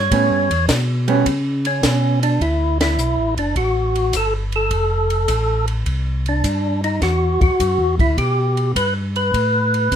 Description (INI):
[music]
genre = soul jazz organ trio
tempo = 104 BPM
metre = 4/4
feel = swing 68% on 8ths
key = D major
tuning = A4 = 441 Hz
[part]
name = percussive tonewheel organ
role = melody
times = 0.0-10.0 s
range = C#4 to C#5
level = -19 LUFS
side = equal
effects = slow rotary speaker, overdrive
[part]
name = mellow tonewheel organ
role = bass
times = 0.0-10.0 s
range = F1 to C#3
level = -20 LUFS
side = equal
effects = overdrive, chorus vibrato, slow rotary speaker
[part]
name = vintage hollow-body jazz guitar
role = accompaniment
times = 0.1-1.2 s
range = G3 to C#4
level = -17 LUFS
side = right 5 dB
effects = none
[part]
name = compact cocktail drum kit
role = drums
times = 0.1-10.0 s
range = hi-hat, kick drum, ride cymbal, snare drum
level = -24 LUFS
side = equal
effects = none
[sound]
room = light reverb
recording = none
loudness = -16 LUFS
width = side -9 dB against mid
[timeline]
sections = 0.0-2.4 A section; 2.4-10.0 B section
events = tonewheel organ solo 0.0-2.4; band accent 2.7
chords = 0.1 A9; 2.4 D69; 4.7 Fadd9; 7.0 Em9; 9.3 Asus2